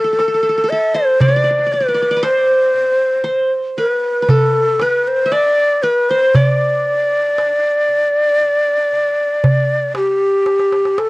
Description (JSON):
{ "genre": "Turkish makam ensemble", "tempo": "117 BPM (eighths)", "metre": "10/8", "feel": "straight", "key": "D makam huseyni", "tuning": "A4 = 441 Hz", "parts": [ { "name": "breathy bright low ney", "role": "melody", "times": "0.0-11.1 s", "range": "G4 to E5-37c", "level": "-14 LUFS", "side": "equal", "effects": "cassette tape" }, { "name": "qanun", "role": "second line", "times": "0.0-10.4 s", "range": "A4 to E5-30c", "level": "-22 LUFS", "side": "right 2 dB", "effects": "cassette tape" }, { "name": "darbuka", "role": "percussion", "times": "0.2-11.1 s", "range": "none", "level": "-16 LUFS", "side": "right 1 dB", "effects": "none" } ], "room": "light reverb", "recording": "home recording on cassette", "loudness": "-12 LUFS", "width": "side -22 dB against mid", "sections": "0.0-11.1 A section", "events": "drum fill 10.5-11.1", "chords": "none", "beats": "0.18 0.70 | 1.21 1.73 2.24 2.75 3.27 3.78 4.29 4.81 5.32 5.83 | 6.35 6.86 7.38 7.89 8.41 8.92 9.44 9.95 10.46 10.98" }